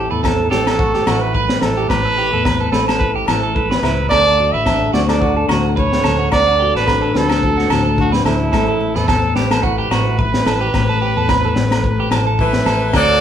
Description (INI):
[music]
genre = highlife guitar band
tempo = 109 BPM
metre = 4/4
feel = swing 55% on 16ths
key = unclear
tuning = A4 = 438 Hz
[part]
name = warm trumpet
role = melody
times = 0.0-13.2 s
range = E4 to E5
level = -19 LUFS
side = right 3 dB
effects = none
[part]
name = nylon-string guitar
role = accompaniment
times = 0.0-13.2 s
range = A2 to B4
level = -22 LUFS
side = left 6 dB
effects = none
[part]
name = electric guitar at the edge of break-up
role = arpeggios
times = 0.0-13.2 s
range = E4 to B4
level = -20 LUFS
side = right 4 dB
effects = phaser
[part]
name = fingered electric bass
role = bass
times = 0.0-13.2 s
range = A1 to E2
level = -21 LUFS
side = equal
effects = none
[part]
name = crunchy breakbeat drum kit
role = drums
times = 0.2-13.1 s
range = kick drum, snare drum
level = -20 LUFS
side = equal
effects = none
[part]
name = agogo bells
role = percussion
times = 0.2-13.1 s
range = none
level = -26 LUFS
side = left 3 dB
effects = none
[part]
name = edgy tenor saxophone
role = second line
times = 12.4-13.2 s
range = E3 to F#3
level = -19 LUFS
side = left 3 dB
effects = none
[sound]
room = moderate large studio reverb, RT60 1.2 s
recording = band playing live in one room, lossy compression artefacts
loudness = -13 LUFS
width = side -9 dB against mid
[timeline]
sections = 0.0-12.9 A section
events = none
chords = 0.0 Asus2; 4.1 D; 8.5 Asus2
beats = 0.24 0.79 1.35 | 1.90 2.45 3.01 3.56 | 4.11 4.67 5.22 5.77 | 6.32 6.88 7.43 7.98 | 8.53 9.08 9.64 10.19 | 10.74 11.29 11.84 12.39 | 12.94